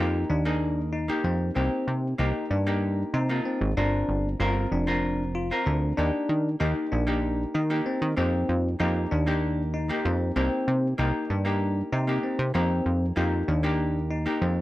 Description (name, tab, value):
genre	progressive instrumental, progressive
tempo	191 BPM (eighths)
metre	7/8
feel	straight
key	unclear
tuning	A4 = 440 Hz
part	vintage hollow-body jazz guitar	accompaniment	0.0-14.6 s	Bb3 to Bb4	-29 LUFS	equal	none
part	bell-like tine electric piano	arpeggios	0.0-14.6 s	C4 to F4	-30 LUFS	left 2 dB	none
part	plucky analog bass	bass	0.0-14.6 s	F1 to Eb3	-26 LUFS	equal	none
room	moderate studio reverb, RT60 0.5 s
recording	none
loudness	-24 LUFS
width	side -16 dB against mid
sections	0.0-14.6 A section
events	none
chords	0.0 Fm11; 1.6 Cm11; 3.8 Gm7; 6.0 Ebmaj7; 8.2 F9sus4; 10.4 Cm9; 12.5 F5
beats	0.29 0.61 0.93 1.25 | 1.56 1.88 2.19 2.51 2.83 3.14 3.46 | 3.77 4.09 4.41 4.72 5.04 5.35 5.67 | 5.98 6.29 6.61 6.92 7.24 7.55 7.87 | 8.18 8.49 8.80 9.12 9.43 9.74 10.05 | 10.37 10.68 10.99 11.30 11.61 11.93 12.24 | 12.55 12.86 13.17 13.48 13.79 14.11 14.42